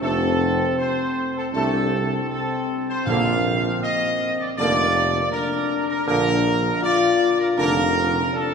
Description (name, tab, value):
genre	classical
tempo	79 BPM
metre	4/4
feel	straight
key	Bb major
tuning	A4 = 440 Hz
part	clear trumpet section	melody	0.0-8.5 s	A4 to F5	-23 LUFS	right 1 dB	none
part	clear trombone section	sustained chords	0.0-7.8 s	C3 to Bb3	-30 LUFS	right 4 dB	none
part	dark French horn section	sustained chords	0.0-8.5 s	Bb3 to F4	-24 LUFS	left 4 dB	none
part	mellow tuba	bass	0.0-8.2 s	F1 to C2	-25 LUFS	right 3 dB	none
part	timpani	percussion	3.1-4.2 s	Bb2	-31 LUFS	right 1 dB	none
room	wet church reverb, RT60 3.4 s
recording	minimal, uncompressed stereo recording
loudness	-19 LUFS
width	side -6 dB against mid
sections	0.0-8.5 A section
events	none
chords	0.0 F; 3.1 Bb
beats	| 0.01 0.77 1.53 2.29 | 3.07 3.83 4.58 5.33 | 6.08 6.83 7.58 8.33